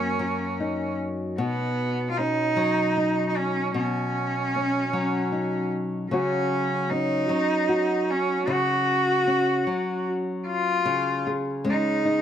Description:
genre	acoustic folk-pop ballad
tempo	51 BPM (dotted quarters)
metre	6/8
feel	straight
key	unclear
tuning	A4 = 439 Hz
part	rich cello	melody	0.0-12.2 s	B3 to F#4	-25 LUFS	right 1 dB	none
part	nylon-string guitar	accompaniment	0.0-12.2 s	F#2 to G#4	-26 LUFS	left 2 dB	none
room	light reverb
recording	none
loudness	-22 LUFS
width	side -9 dB against mid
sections	0.0-10.8 A section; 10.8-12.2 B section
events	none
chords	0.0 F#6; 1.4 Badd9; 6.1 C#sus4; 10.8 C#sus2

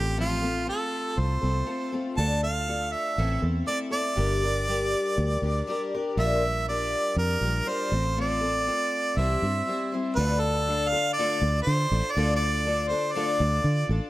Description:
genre	folk rock and heartland rock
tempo	120 BPM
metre	4/4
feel	straight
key	D minor from 10.2 s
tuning	A4 = 441 Hz
part	clear harmonica	melody	0.0-13.9 s	F4 to A5	-27 LUFS	right 2 dB	tape echo
part	picked twelve-string acoustic guitar	accompaniment	0.0-14.1 s	A2 to C5	-30 LUFS	left 3 dB	none
part	fingered electric bass	bass	0.0-14.0 s	G1 to D3	-26 LUFS	equal	none
room	light reverb, studio reverb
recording	none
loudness	-24 LUFS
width	side -16 dB against mid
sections	0.0-10.2 A section; 10.2-14.1 B section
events	none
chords	0.0 F/A; 2.2 Dm; 3.2 Am; 4.2 Gm; 6.2 Bb6; 7.9 F/A; 9.2 C; 10.2 Dm

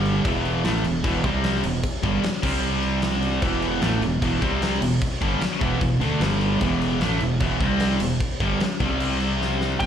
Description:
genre	hard rock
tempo	151 BPM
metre	4/4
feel	straight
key	E minor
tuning	A4 = 445 Hz
part	crunchy overdriven guitar	riff	0.0-9.9 s	E2 to D4	-27 LUFS	right 8 dB	slapback echo
part	heavy high-gain guitar	riff	0.0-9.9 s	E2 to D4	-29 LUFS	left 10 dB	distortion
part	sludgy distorted guitar	riff	0.0-9.8 s	E2 to D4	-27 LUFS	left 1 dB	overdrive
part	fuzz fingered electric bass	bass	0.0-9.9 s	E1 to D2	-26 LUFS	equal	overdrive
part	big rock drum kit	drums	0.1-9.9 s	crash cymbal, kick drum, ride cymbal, snare drum	-27 LUFS	left 1 dB	none
part	nasal lead guitar with a parked wah	melody	9.8-9.9 s	G5	-24 LUFS	right 1 dB	overdrive
room	small room ambience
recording	live gig heard through the venue's PA, club reverb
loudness	-20 LUFS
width	side -8 dB against mid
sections	0.0-9.8 A section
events	drum fill 9.4-9.8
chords	0.2 E5; 1.2 C5; 1.6 Em; 2.4 C5; 3.4 E5; 4.4 C5; 4.8 Em; 6.2 G5; 6.6 E5; 7.6 C5; 8.0 Em; 8.8 C5

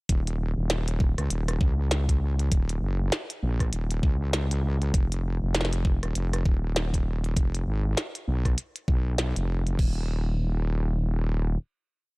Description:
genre	glitch hop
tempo	99 BPM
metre	4/4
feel	swing 59% on 16ths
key	Eb minor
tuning	A4 = 440 Hz
part	wobble bass	bass	0.1-11.6 s	Eb1 to Db2	-26 LUFS	equal	chorus, overdrive
part	drum and bass drum kit	drums	0.1-10.0 s	crash cymbal, kick drum	-24 LUFS	equal	none
part	glitchy drum kit	drums	0.1-9.8 s	hi-hat, rim click, snare drum	-30 LUFS	equal	none
room	little or no reverb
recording	dry, gritty hardware recording, transformer saturation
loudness	-24 LUFS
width	side -26 dB against mid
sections	0.1-9.8 drop; 9.8-12.2 final note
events	drop 0.1-9.8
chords	none

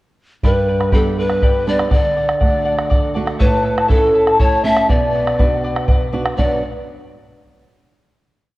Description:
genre	andean folk, Andean ensemble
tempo	81 BPM (dotted quarters)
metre	6/8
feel	straight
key	B minor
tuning	A4 = 440 Hz
part	charango	accompaniment	0.4-6.6 s	E4 to B5	-22 LUFS	left 2 dB	none
part	flamenco guitar	accompaniment	0.4-6.6 s	G2 to F#4	-22 LUFS	right 2 dB	none
part	bombo	percussion	0.4-6.6 s	none	-18 LUFS	equal	none
part	mellow hollow pan flute	melody	0.5-6.6 s	A4 to E5	-18 LUFS	equal	none
room	moderate scoring stage reverb, RT60 1.8 s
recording	worn, warbling old tape, cassette tape, warbly pitch drift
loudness	-13 LUFS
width	side -18 dB against mid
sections	0.4-6.4 A section; 6.4-7.9 final chord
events	none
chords	0.4 G; 1.9 D; 3.4 A; 4.9 Bm

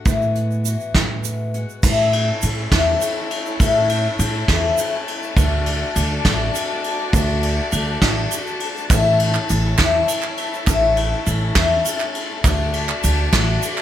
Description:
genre	indie folk with a building arrangement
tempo	68 BPM (dotted quarters)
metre	6/8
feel	straight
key	A major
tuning	A4 = 440 Hz
part	picked twelve-string acoustic guitar	accompaniment	0.0-13.8 s	A2 to F#4	-22 LUFS	left 4 dB	none
part	upright bass	bass	0.1-13.6 s	A1 to A2	-21 LUFS	right 1 dB	none
part	soft brush drum kit	drums	0.1-13.8 s	crash cymbal, hi-hat, kick drum, ride cymbal, snare drum	-21 LUFS	right 1 dB	none
part	egg shaker	percussion	0.1-13.8 s	none	-29 LUFS	right 10 dB	none
part	dark chamber string section	sustained chords	1.8-13.8 s	E4 to A5	-27 LUFS	left 2 dB	none
part	group handclap	percussion	8.9-13.8 s	none	-27 LUFS	right 6 dB	none
room	light reverb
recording	none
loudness	-16 LUFS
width	side -11 dB against mid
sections	0.0-1.8 A section; 1.8-13.8 B section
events	none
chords	0.1 Eadd9/A; 1.8 A; 5.4 D; 8.9 A; 12.4 D

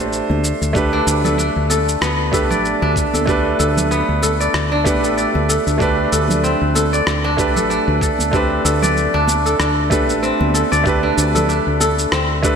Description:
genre	organic downtempo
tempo	95 BPM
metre	4/4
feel	swing 56% on 16ths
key	unclear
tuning	A4 = 440 Hz
part	felt-muted upright piano	accompaniment	0.0-12.6 s	A3 to C5	-20 LUFS	right 2 dB	sidechain pumping, ping-pong delay
part	woody fretless electric bass	bass	0.0-12.6 s	A1 to D2	-20 LUFS	left 1 dB	sidechain pumping
part	congas	percussion	0.0-12.0 s	none	-27 LUFS	right 2 dB	none
part	electronic shaker and rim click	drums	0.1-12.6 s	none	-24 LUFS	equal	gated reverb
part	electronic kick drum	drums	0.8-12.6 s	none	-22 LUFS	left 1 dB	none
part	kora	arpeggios	0.9-12.6 s	B3 to D5	-19 LUFS	left 1 dB	ping-pong delay
room	moderate lush hall reverb, RT60 2.2 s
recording	bright 1980s-style digital production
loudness	-14 LUFS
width	side -6 dB against mid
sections	0.0-12.6 A section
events	none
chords	0.0 D5; 0.8 G; 5.8 Am11

